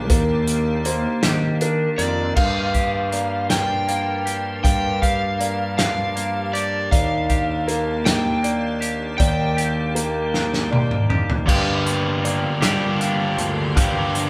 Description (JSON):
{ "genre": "post-rock", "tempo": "53 BPM (dotted quarters)", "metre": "6/8", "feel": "straight", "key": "G minor", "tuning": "A4 = 440 Hz", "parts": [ { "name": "icy glass pad", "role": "sustained chords", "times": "0.0-14.3 s", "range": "Eb3 to G5", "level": "-32 LUFS", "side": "equal", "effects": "chorus, built-in reverb" }, { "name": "felt-muted upright piano", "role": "arpeggios", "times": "0.0-14.3 s", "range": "Bb4 to F5", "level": "-32 LUFS", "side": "equal", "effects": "none" }, { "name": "twangy electric guitar", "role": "arpeggios", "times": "0.0-14.3 s", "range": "G2 to G4", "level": "-32 LUFS", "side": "equal", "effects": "spring reverb" }, { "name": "fuzz picked electric bass", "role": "bass", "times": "0.0-14.3 s", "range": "D2 to G3", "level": "-27 LUFS", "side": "equal", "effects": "overdrive" }, { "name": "loose indie drum kit", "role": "drums", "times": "0.1-14.3 s", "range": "crash cymbal, hi-hat, kick drum, snare drum, toms", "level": "-24 LUFS", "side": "equal", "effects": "none" }, { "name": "overdriven slide guitar", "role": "melody", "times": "2.0-11.0 s", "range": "D5 to G5", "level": "-26 LUFS", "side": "equal", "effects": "none" }, { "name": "cranked stack guitar", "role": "riff", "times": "11.5-14.3 s", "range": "G2 to G4", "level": "-24 LUFS", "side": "equal", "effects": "overdrive" } ], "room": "moderate studio reverb, RT60 0.7 s", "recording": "band playing live in one room", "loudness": "-21 LUFS", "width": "mono", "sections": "0.0-2.4 A section; 2.4-11.5 B section; 11.5-14.3 A section", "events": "drum fill 10.3-11.5", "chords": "0.0 Ebmaj7; 2.4 Gm7; 6.9 Ebmaj7; 11.5 Gm7", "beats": "| 0.10 1.23 | 2.37 3.50 | 4.64 5.78 | 6.92 8.05 | 9.19 10.33 | 11.47 12.62 | 13.76" }